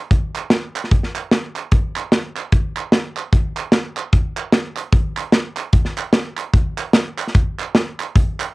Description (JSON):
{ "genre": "gospel", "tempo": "149 BPM", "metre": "4/4", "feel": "swing 60% on 8ths", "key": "none", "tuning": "none", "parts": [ { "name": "modern studio drum kit", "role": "drums", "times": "0.1-8.5 s", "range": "hi-hat, kick drum, snare drum", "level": "-15 LUFS", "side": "equal", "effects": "none" }, { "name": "group handclap", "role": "percussion", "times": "0.4-8.5 s", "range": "none", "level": "-26 LUFS", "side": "right 7 dB", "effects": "none" } ], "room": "light reverb", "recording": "home recording on cassette", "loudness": "-16 LUFS", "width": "side -21 dB against mid", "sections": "0.0-8.5 A section", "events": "none", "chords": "none" }